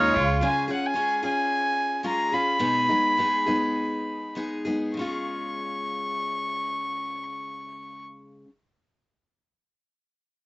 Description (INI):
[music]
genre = acoustic folk duo or small band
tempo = 94-113 BPM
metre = 4/4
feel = straight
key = Db mixolydian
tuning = A4 = 440 Hz
[part]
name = warm fiddle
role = melody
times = 0.0-8.0 s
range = Db5 to Db6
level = -25 LUFS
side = equal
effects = cassette tape
[part]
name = picked steel-string acoustic guitar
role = accompaniment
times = 0.0-8.5 s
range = Cb3 to Ab4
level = -29 LUFS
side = left 1 dB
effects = cassette tape
[part]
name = mandolin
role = arpeggios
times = 0.0-0.5 s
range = Ab3 to F5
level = -24 LUFS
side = right 2 dB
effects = cassette tape
[sound]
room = moderate booth ambience, RT60 0.2 s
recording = home recording on cassette, nothing above 7.9 kHz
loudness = -23 LUFS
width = side -22 dB against mid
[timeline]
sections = 0.4-5.0 A section; 5.0-10.1 B section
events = slowing down 0.4-5.0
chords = 0.4 Db; 2.6 Abm/Cb; 5.0 Db